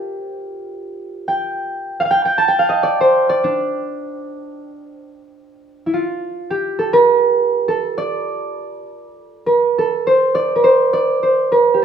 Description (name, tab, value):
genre	arabic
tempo	102 BPM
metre	3/4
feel	straight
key	D minor, A maqam bayati from 5.4 s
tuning	A4 = 441 Hz
part	concert harp	solo	0.0-11.8 s	D4 to A5	-15 LUFS	right 2 dB	none
room	moderate large studio reverb, RT60 1.1 s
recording	band playing live in one room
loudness	-14 LUFS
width	side -8 dB against mid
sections	0.0-5.4 A section; 5.4-11.8 B section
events	none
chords	none